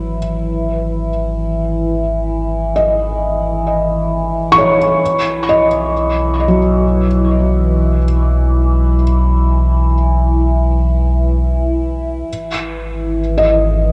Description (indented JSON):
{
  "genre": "ambient",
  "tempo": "free time",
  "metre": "none",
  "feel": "none",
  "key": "unclear",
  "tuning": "A4 = 440 Hz",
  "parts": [
    { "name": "felt-muted upright piano", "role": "arpeggios", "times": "0.0-13.9 s", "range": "F#3 to C#6", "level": "-18 LUFS", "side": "equal", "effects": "tape echo" },
    { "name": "warm sub bass", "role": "bass", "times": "0.0-13.9 s", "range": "G#1 to B1", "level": "-18 LUFS", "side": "equal", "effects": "none" },
    { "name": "overtone-sweeping drone", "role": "drone", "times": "0.0-13.9 s", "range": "E3 to E4", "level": "-22 LUFS", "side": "equal", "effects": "chorus, built-in reverb, phaser" }
  ],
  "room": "wet spring reverb, RT60 2.7 s",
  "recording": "echo-heavy mix, nothing above 10.8 kHz",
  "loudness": "-15 LUFS",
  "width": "mono",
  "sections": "0.0-13.9 A section",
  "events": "fade-in on sub bass 0.0-13.9; fade-in on synth drone 0.0-13.9",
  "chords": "0.0 G#5; 5.0 Bsus4; 12.3 G#5",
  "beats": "free time"
}